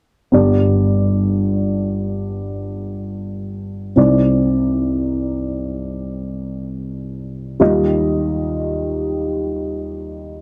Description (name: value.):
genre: pop.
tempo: free time.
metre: none.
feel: none.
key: unclear.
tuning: A4 = 440 Hz.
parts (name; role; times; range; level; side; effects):
dark upright piano; accompaniment; 0.3-10.4 s; G1 to Eb5; -19 LUFS; equal; none.
room: moderate booth ambience, RT60 0.2 s.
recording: none.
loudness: -19 LUFS.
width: mono.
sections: 0.3-10.4 A section.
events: none.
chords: 0.3 G; 4.0 Cmadd9; 7.6 Ebadd9.